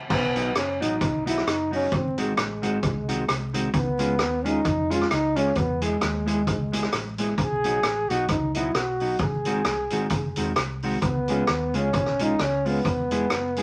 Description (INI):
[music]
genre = ska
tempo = 132 BPM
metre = 4/4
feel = swing 57% on 8ths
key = B mixolydian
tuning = A4 = 440 Hz
[part]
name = mellow trombone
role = melody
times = 0.1-13.6 s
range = G#3 to G#4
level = -28 LUFS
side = equal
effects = none
[part]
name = hollow-body short-scale fingered electric bass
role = bass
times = 0.1-13.6 s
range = E1 to E#2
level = -34 LUFS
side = equal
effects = none
[part]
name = street-band drum kit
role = drums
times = 0.1-13.6 s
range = crash cymbal, hi-hat, kick drum, rim click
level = -30 LUFS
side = equal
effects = tape echo
[part]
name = mellow electric guitar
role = accompaniment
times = 0.4-13.6 s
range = D#3 to G#4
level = -30 LUFS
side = equal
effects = none
[sound]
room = wet studio ambience, RT60 0.5 s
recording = vinyl crackle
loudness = -25 LUFS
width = mono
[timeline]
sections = 0.1-13.6 A section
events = none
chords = 0.1 B; 1.9 G#7; 3.7 C#; 5.6 E; 7.4 B; 9.2 G#7; 11.0 C#; 12.8 E